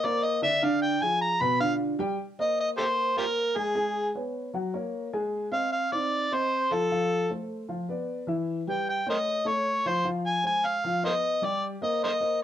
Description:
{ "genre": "jazz", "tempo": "153 BPM", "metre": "4/4", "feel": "straight", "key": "unclear", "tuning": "A4 = 441 Hz", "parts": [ { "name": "overdriven harmonica", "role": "melody", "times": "0.0-12.4 s", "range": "F4 to B5", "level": "-25 LUFS", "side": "equal", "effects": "none" }, { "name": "dark upright piano", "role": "accompaniment", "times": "0.0-12.4 s", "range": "B2 to Ab5", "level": "-30 LUFS", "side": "equal", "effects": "none" } ], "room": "moderate club reverb, RT60 0.7 s", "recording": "none", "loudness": "-25 LUFS", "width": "side -11 dB against mid", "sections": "0.0-2.2 A section; 2.2-12.4 B section", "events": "harmonica solo 0.0-2.2", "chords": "0.0 Csus2; 0.6 Ddim; 1.4 G7; 2.2 Abadd9; 3.8 Db5; 4.5 F#add9; 5.3 Ab; 6.9 F; 7.7 Dm69; 8.5 Emadd11; 9.3 Aaug; 10.0 Fm; 10.8 G7b13; 11.6 Cm7" }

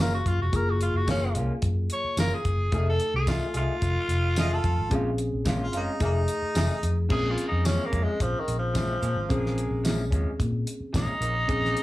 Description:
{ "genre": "straight-eighth soul blues", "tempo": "110 BPM", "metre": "4/4", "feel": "straight", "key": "Bb minor", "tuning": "A4 = 440 Hz", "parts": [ { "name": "raspy tenor saxophone", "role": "melody", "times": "0.0-11.8 s", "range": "Eb3 to Db5", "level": "-29 LUFS", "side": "equal", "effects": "none" }, { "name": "mellow reed electric piano", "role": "accompaniment", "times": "0.0-11.8 s", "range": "A3 to A4", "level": "-33 LUFS", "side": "equal", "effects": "none" }, { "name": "electric guitar through a small old amp", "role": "stabs", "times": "0.0-11.1 s", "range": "Bb2 to G#4", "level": "-34 LUFS", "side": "left 2 dB", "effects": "slapback echo" }, { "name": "vintage muted fingered electric bass", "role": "bass", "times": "0.0-11.7 s", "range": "F1 to Bb2", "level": "-27 LUFS", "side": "equal", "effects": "none" }, { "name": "cloth-damped thuddy drum kit", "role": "drums", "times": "0.0-11.8 s", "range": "crash cymbal, hi-hat, kick drum, snare drum, tambourine", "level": "-29 LUFS", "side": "equal", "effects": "none" }, { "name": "warm harmonica", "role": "second line", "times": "4.4-7.0 s", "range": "Bb3 to Eb5", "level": "-32 LUFS", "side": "right 2 dB", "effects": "none" }, { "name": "warm horn section", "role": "sustained chords", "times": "7.1-11.8 s", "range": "Eb3 to Ab4", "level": "-39 LUFS", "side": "left 2 dB", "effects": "none" } ], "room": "little or no reverb", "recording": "small room ambience", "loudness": "-24 LUFS", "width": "side -17 dB against mid", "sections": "0.0-7.1 A section; 7.1-11.8 B section", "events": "tenor saxophone solo 7.1-11.8", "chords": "0.0 Gbmaj7; 2.7 F7#9; 4.9 Bbm7; 6.0 F7#9; 7.1 Bbm7" }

